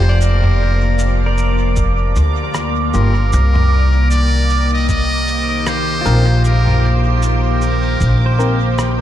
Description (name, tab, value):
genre	ambient dub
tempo	77 BPM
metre	4/4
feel	swing 58% on 16ths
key	unclear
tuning	A4 = 441 Hz
part	trumpet with metal mute	melody	0.0-8.7 s	Bb4 to Eb5	-23 LUFS	left 1 dB	dub echo
part	soft additive organ-like pad	sustained chords	0.0-9.0 s	Eb3 to D5	-22 LUFS	left 1 dB	ensemble chorus, built-in reverb
part	pedal steel guitar	arpeggios	0.0-9.0 s	F4 to D5	-27 LUFS	equal	tape echo
part	upright bass	bass	0.0-9.0 s	F1 to D2	-14 LUFS	equal	none
part	bubbling stepped-filter texture	texture	0.5-9.0 s	D6	-26 LUFS	right 8 dB	chorus, built-in reverb
part	lo-fi sampler-style drum kit	drums	0.2-9.0 s	rim click, shaker, toms	-26 LUFS	equal	dub echo
part	electronic kick drum	drums	1.8-8.2 s	none	-20 LUFS	equal	none
part	overdriven tine electric piano	stabs	2.9-8.6 s	Bb3 to Bb4	-27 LUFS	left 3 dB	phaser, dub echo
room	digital ambience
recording	none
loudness	-12 LUFS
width	side -12 dB against mid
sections	0.0-9.0 A section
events	none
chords	0.0 Gm7; 3.3 Cm7